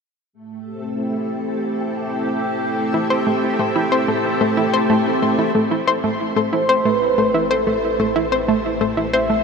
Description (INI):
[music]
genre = ambient, sequencer-driven space music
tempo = 92 BPM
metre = 4/4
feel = straight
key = A minor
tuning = A4 = 440 Hz
[part]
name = string machine, full ensemble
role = sustained chords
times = 0.3-9.4 s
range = A3 to E5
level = -23 LUFS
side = equal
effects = ensemble chorus
[part]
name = bubbling stepped-filter texture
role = texture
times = 0.8-9.4 s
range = G4 to G5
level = -27 LUFS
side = right 1 dB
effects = chorus, built-in reverb
[part]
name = analog pluck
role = riff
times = 2.9-9.4 s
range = A3 to C5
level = -18 LUFS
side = equal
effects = chorus, tape echo
[part]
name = fat analog bass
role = bass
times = 5.5-9.4 s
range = A1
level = -37 LUFS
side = equal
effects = tube saturation
[part]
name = expressive synth lead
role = melody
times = 6.5-9.4 s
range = A4 to E5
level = -20 LUFS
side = right 1 dB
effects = wide subtle chorus, tape echo
[sound]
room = wet huge ambient reverb, RT60 7.3 s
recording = in a vast, echoing space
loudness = -17 LUFS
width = side -5 dB against mid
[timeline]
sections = 0.3-5.5 A section; 5.5-9.4 B section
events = none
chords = 0.3 Am